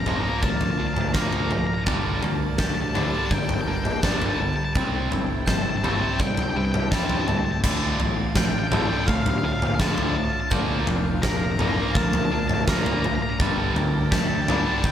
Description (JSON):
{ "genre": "post-rock", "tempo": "83 BPM", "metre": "4/4", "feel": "straight", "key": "unclear", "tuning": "A4 = 440 Hz", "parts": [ { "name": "octave-fuzz lead guitar", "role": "melody", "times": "0.0-14.9 s", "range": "F5 to Bb5", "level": "-30 LUFS", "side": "left 2 dB", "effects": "distortion, digital delay" }, { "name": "clear studio string section", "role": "sustained chords", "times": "0.0-14.9 s", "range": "D4 to A5", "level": "-36 LUFS", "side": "equal", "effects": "none" }, { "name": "glockenspiel with brass mallets", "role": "arpeggios", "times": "0.0-14.9 s", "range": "F6 to A6", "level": "-36 LUFS", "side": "right 4 dB", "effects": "slapback echo, digital delay" }, { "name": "twangy electric guitar", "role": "arpeggios", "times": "0.0-14.9 s", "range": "D2 to C5", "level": "-35 LUFS", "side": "left 1 dB", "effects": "none" }, { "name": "tight distorted guitar", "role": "riff", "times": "0.0-14.9 s", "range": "D2 to C4", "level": "-27 LUFS", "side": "right 1 dB", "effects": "distortion" }, { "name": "fuzz fingered electric bass", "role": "bass", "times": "0.0-14.9 s", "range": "F1 to G2", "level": "-29 LUFS", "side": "equal", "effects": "overdrive" }, { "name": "huge arena drum kit", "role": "drums", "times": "0.1-14.9 s", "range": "crash cymbal, kick drum, snare drum, toms", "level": "-24 LUFS", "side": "equal", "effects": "none" } ], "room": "moderate scoring stage reverb, RT60 1.7 s, studio reverb", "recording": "big arena sound", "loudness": "-21 LUFS", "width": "side -10 dB against mid", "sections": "0.0-14.9 A section", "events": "build-up 0.0-14.9", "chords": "0.0 Bb; 1.9 Gmadd9; 4.8 C; 7.6 Dm; 10.5 Bb; 13.4 Gmadd9" }